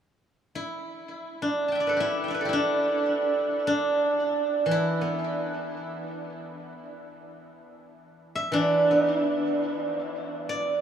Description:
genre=chinese traditional, Chinese solo plucked strings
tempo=free time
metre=none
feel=none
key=E yu mode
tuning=A4 = 440 Hz
part: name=steel-string zither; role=solo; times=0.6-10.8 s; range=E3 to A5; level=-24 LUFS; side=right 1 dB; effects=tape echo
room=wet huge ambient reverb, RT60 8.7 s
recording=in a vast, echoing space, small room ambience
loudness=-24 LUFS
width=side -9 dB against mid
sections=0.0-10.8 A section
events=none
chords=none

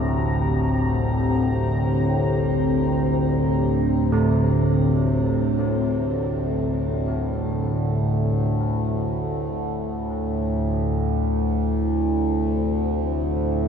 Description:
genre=dark ambient drone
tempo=free time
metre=none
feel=none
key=D minor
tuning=A4 = 438 Hz
part: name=dark analog pad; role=sustained chords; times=0.0-13.7 s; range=D3 to Bb5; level=-25 LUFS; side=left 1 dB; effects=chorus, phaser, shimmer reverb
part: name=old church bells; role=arpeggios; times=0.0-10.1 s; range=A2 to A3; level=-32 LUFS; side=right 2 dB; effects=ping-pong delay, shimmer reverb
part: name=overtone-sweeping drone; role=drone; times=0.0-13.7 s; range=D2 to A2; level=-22 LUFS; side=equal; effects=chorus, built-in reverb, phaser
room=wet huge ambient reverb, RT60 7.8 s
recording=dark, warm production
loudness=-20 LUFS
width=side -7 dB against mid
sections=0.0-9.5 A section; 9.5-13.7 B section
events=none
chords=0.0 Gm; 9.5 Dm

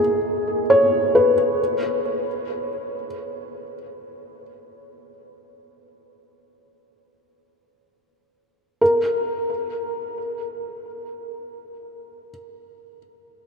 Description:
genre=ambient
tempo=free time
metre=none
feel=none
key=unclear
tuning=A4 = 440 Hz
part: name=felt-muted upright piano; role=solo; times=0.0-13.5 s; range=Bb3 to Db5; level=-20 LUFS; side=equal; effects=ping-pong delay
room=wet huge ambient reverb, RT60 7.7 s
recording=in a vast, echoing space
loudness=-19 LUFS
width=side -5 dB against mid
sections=0.0-8.8 A section; 8.8-12.4 B section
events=none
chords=0.0 E; 1.6 N.C.

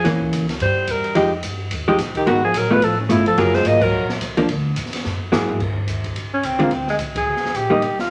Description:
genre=jazz, small-group swing and bop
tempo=216 BPM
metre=4/4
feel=swing 59% on 8ths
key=unclear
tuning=A4 = 439 Hz
part: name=warm alto saxophone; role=melody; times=0.0-4.1, 6.3-8.1 s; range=Ab3 to Eb5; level=-22 LUFS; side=equal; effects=none
part: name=breathy trombone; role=second line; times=0.0-4.1 s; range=A2 to Bb3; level=-28 LUFS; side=equal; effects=none
part: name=vintage hollow-body jazz guitar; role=accompaniment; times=0.0-7.8 s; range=D3 to Bb4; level=-21 LUFS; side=equal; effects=none
part: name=upright bass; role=bass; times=0.0-8.1 s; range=Gb1 to Ab2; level=-29 LUFS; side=equal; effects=none
part: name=open jazz drum kit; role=drums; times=0.0-8.0 s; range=crash cymbal, hi-hat, kick drum, ride cymbal, snare drum, toms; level=-30 LUFS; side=equal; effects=none
room=wet large studio reverb, RT60 1.0 s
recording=none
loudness=-19 LUFS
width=mono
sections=0.0-5.6 A section; 5.6-8.1 B section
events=band accent 3.8, 7.1; drum fill 5.0-5.6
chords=0.0 C7b9; 1.2 Fm9; 2.3 Abm9; 2.8 G13; 3.4 Gbmaj9; 4.5 Dsus2; 5.0 Gb9; 5.6 F7(no3); 6.7 Csus2; 7.3 Dbsus2

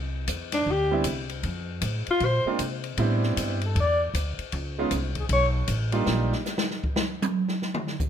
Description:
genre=jazz, small-group swing and bop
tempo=155 BPM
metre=4/4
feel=swing 64% on 8ths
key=unclear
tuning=A4 = 442 Hz
part: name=upright bass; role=bass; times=0.0-6.3 s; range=A1 to C3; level=-27 LUFS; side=equal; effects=none
part: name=open jazz drum kit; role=drums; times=0.3-8.1 s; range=hi-hat, kick drum, ride cymbal, snare drum, toms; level=-30 LUFS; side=left 1 dB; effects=none
part: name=warm alto saxophone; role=melody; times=0.5-5.5 s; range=D4 to D5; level=-25 LUFS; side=left 1 dB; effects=none
part: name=clear grand piano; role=accompaniment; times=0.9-6.3 s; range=G3 to F4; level=-28 LUFS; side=right 4 dB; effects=none
room=moderate large studio reverb, RT60 1.3 s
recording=none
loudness=-24 LUFS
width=side -9 dB against mid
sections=0.0-8.1 A section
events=alto saxophone solo 0.0-8.1; drum solo 6.1-8.1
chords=0.0 Cadd9; 1.4 F; 2.2 Bb9; 3.0 Am11; 4.5 Db9; 6.1 Ebmaj9

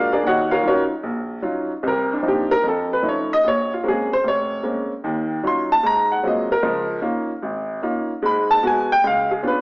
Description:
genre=solo jazz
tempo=150 BPM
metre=4/4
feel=swing 66% on 8ths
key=Db major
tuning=A4 = 443 Hz
part: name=clear upright piano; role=solo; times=0.0-9.6 s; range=F1 to C6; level=-18 LUFS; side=equal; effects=none
room=moderate large studio reverb, RT60 1.2 s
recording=worn, warbling old tape, cassette tape, warbly pitch drift, small speaker sound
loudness=-18 LUFS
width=side -28 dB against mid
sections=0.0-9.6 A section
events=upright piano solo 0.0-9.6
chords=0.2 Ebm9; 1.8 Cm11; 2.6 Faug7; 3.4 Bbm9; 5.0 Ebm9; 5.8 Ab13; 6.6 Db69; 8.2 Abm7; 9.0 Db7b9

